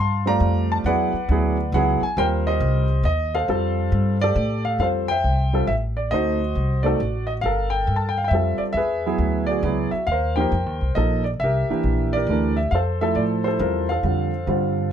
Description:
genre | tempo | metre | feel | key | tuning
jazz piano trio | 136 BPM | 3/4 | swing 66% on 8ths | F major from 4.8 s | A4 = 443 Hz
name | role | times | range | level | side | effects
warm concert grand piano | melody | 0.0-14.9 s | D3 to C6 | -21 LUFS | right 1 dB | none
upright bass | bass | 0.0-14.9 s | G1 to A2 | -23 LUFS | equal | none
room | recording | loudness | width
light reverb | close, detailed microphones | -19 LUFS | side -9 dB against mid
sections
0.0-4.8 A section; 4.8-14.9 B section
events
none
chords
0.0 Bbmaj9; 0.9 E9; 2.2 Eb6; 3.5 F69; 4.8 Fmaj9; 6.1 D7b9; 7.4 Gm9; 8.8 E9; 10.1 Eb69; 11.4 C9; 12.7 Fmaj9

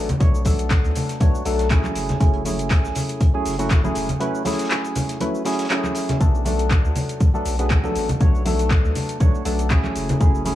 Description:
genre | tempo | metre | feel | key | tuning
deep house | 120 BPM | 4/4 | swing 55% on 16ths | B dorian | A4 = 440 Hz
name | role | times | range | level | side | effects
percussive organ stab | stabs | 0.0-10.6 s | F#3 to C#5 | -24 LUFS | equal | chorus, sidechain pumping, tape echo
round analog bass | bass | 0.0-10.6 s | E1 to D2 | -24 LUFS | equal | sidechain pumping
deep house drum kit | drums | 0.1-10.6 s | handclaps, hi-hat, shaker | -28 LUFS | equal | overdrive
congas | percussion | 0.1-10.6 s | none | -27 LUFS | equal | none
electronic kick drum | drums | 0.2-10.3 s | none | -17 LUFS | equal | overdrive
warm soul drum kit | drums | 0.2-6.2 s | hi-hat, snare drum | -38 LUFS | equal | sidechain pumping on hats, high-pass filter on hats, high-pass filter on snare, high-pass filter on room
room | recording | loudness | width
little or no reverb | vinyl crackle, small room ambience | -18 LUFS | side -13 dB against mid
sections
0.0-6.2 A section; 6.2-10.6 A section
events
break 4.2-6.2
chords
0.0 Bm7; 2.0 F#m9; 6.2 Bm7; 10.0 F#m9

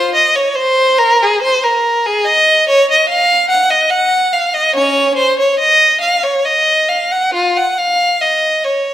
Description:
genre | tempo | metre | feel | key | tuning
classical, baroque-style suite movement for unaccompanied violin | 65-74 BPM | 3/4 | rubato | unclear | A4 = 440 Hz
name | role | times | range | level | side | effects
rich violin | solo | 0.0-8.9 s | Db4 to Gb5 | -10 LUFS | equal | none
room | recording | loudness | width
moderate recital hall reverb, RT60 1.4 s | none | -10 LUFS | side -12 dB against mid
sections
0.0-8.9 A section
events
none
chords
none

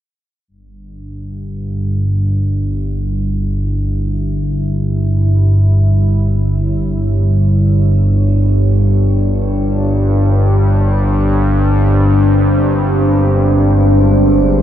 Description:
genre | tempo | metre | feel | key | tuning
dark ambient drone | free time | none | none | unclear | A4 = 439 Hz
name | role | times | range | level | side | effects
deep dark ambient pad | sustained chords | 3.1-14.6 s | D4 to C#5 | -20 LUFS | left 1 dB | chorus, built-in reverb, shimmer reverb
analog drone | drone | 1.1-14.6 s | G1 to G2 | -12 LUFS | equal | chorus
room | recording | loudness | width
wet cathedral reverb, RT60 6.6 s | dark, warm production | -11 LUFS | side -11 dB against mid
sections
0.5-14.6 A section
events
fade-in on ambient pad 0.5-14.6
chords
0.5 Em; 9.6 Ab

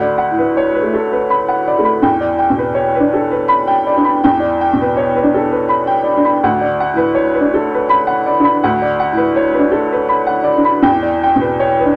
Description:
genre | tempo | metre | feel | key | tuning
neoclassical minimalist piano | 82 BPM | 3/4 | rubato | D major | A4 = 442 Hz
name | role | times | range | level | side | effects
clear upright piano | solo | 0.0-12.0 s | D2 to B5 | -14 LUFS | equal | none
room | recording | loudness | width
wet club reverb, RT60 0.8 s | none | -14 LUFS | mono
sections
0.0-12.0 A section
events
none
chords
0.0 D6; 2.0 Em7; 6.4 D6; 10.8 Em7

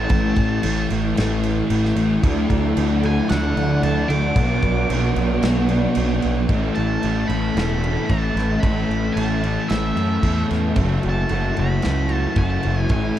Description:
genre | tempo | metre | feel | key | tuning
rock, shoegaze and dream pop | 112 BPM | 4/4 | straight | A major | A4 = 436 Hz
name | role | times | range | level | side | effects
octave-fuzz lead guitar | melody | 0.0-13.2 s | E5 to D6 | -29 LUFS | right 1 dB | distortion, plate reverb, tape echo
picked twelve-string acoustic guitar | arpeggios | 0.0-6.5, 10.8-13.2 s | E3 to F#4 | -30 LUFS | right 3 dB | ensemble chorus, tape echo
raw garage guitar | riff | 0.0-13.2 s | A2 to F#4 | -27 LUFS | right 6 dB | overdrive, reverse reverb
thick fuzz guitar | riff | 0.0-13.2 s | F#2 to D4 | -23 LUFS | left 5 dB | distortion, wide subtle chorus
fuzz picked electric bass | bass | 0.0-13.1 s | E1 to F#2 | -22 LUFS | equal | overdrive
loose indie drum kit | drums | 0.1-13.2 s | crash cymbal, kick drum, snare drum | -26 LUFS | right 1 dB | none
hollow soft pad | sustained chords | 2.2-13.2 s | B3 to A5 | -31 LUFS | equal | chorus
room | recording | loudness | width
moderate studio reverb, RT60 0.5 s | dark, warm production | -17 LUFS | side -11 dB against mid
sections
0.0-6.5 A section; 6.5-13.2 B section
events
none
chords
0.0 A; 2.2 Dadd9; 4.4 Bm; 6.5 A; 10.8 F#m7

